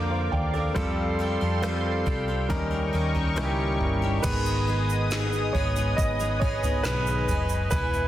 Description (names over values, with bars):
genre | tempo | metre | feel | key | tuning
pop ballad | 69 BPM | 4/4 | straight | G# minor from 4.2 s | A4 = 440 Hz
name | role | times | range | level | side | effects
warm concert grand piano | accompaniment | 0.0-8.1 s | Eb3 to G5 | -28 LUFS | right 1 dB | none
lush unison pad | sustained chords | 0.0-8.1 s | E4 to D#6 | -32 LUFS | equal | chorus, phaser
picked steel-string acoustic guitar | arpeggios | 0.0-8.1 s | G#2 to Bb4 | -34 LUFS | left 4 dB | none
woody fretless electric bass | bass | 0.0-8.1 s | E1 to F2 | -28 LUFS | equal | none
smooth R&B drum kit | drums | 0.3-7.9 s | crash cymbal, kick drum, rim click, snare drum, toms | -30 LUFS | equal | none
tube shaker | percussion | 4.2-8.1 s | none | -42 LUFS | right 8 dB | none
room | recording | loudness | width
light reverb, digital ambience | dense, heavily limited modern master | -23 LUFS | side -12 dB against mid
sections
0.0-4.2 A section; 4.2-8.1 B section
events
grand piano solo 4.2-8.1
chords
0.0 Bb; 0.8 Fadd9; 2.5 Eb7; 4.2 G#m